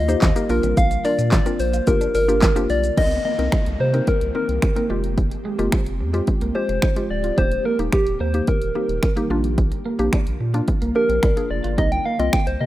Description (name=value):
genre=dance-pop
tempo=109 BPM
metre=4/4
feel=straight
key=C minor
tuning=A4 = 440 Hz
part: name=soft struck synth lead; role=melody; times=0.0-12.7 s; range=G4 to G5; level=-22 LUFS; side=equal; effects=chorus, digital delay
part: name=ethereal airy pad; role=sustained chords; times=0.0-12.7 s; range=D3 to G4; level=-31 LUFS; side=left 2 dB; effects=ensemble chorus, built-in reverb, phaser, sidechain pumping
part: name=twelve-string electric guitar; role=riff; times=0.0-12.7 s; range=G3 to F4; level=-31 LUFS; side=right 4 dB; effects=analog chorus
part: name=saturated sub bass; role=bass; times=0.0-12.7 s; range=D1 to C3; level=-24 LUFS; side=equal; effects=sidechain pumping
part: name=mallet-like synth pluck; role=accompaniment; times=0.1-12.6 s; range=Ab3 to C5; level=-26 LUFS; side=left 2 dB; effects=chorus, sidechain pumping
part: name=punchy analog drum machine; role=drums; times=0.1-12.6 s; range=crash cymbal, finger snaps, handclaps, hi-hat, kick drum, shaker, snare drum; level=-20 LUFS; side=equal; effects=none
part: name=downlifter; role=sound effects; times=3.0-7.4 s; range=none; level=-36 LUFS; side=left 1 dB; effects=none
room=digital ambience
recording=rough home demo mix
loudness=-18 LUFS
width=side -15 dB against mid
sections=0.0-3.0 A section; 3.0-12.7 B section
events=none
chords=0.5 Bb; 1.9 Gm7; 3.0 Cm7; 4.9 Fmadd9; 7.4 Eb; 9.3 Bb; 11.8 Cm7